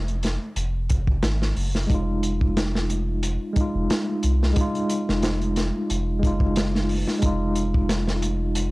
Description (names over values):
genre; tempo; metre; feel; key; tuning
trip hop; 90 BPM; 4/4; swing 55% on 16ths; F phrygian; A4 = 435 Hz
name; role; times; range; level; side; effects
soft dub sub bass; bass; 0.0-8.7 s; F1 to C2; -25 LUFS; equal; tube saturation
crunchy breakbeat drum kit; drums; 0.1-8.7 s; hi-hat, kick drum, snare drum; -25 LUFS; equal; none
mellow tine electric piano; accompaniment; 1.9-8.7 s; Ab3 to F4; -25 LUFS; equal; medium stereo tremolo, tape echo
room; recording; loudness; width
studio reverb; dry, gritty hardware recording, cassette tape; -21 LUFS; side -22 dB against mid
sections
0.0-8.7 A section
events
none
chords
0.0 Fm7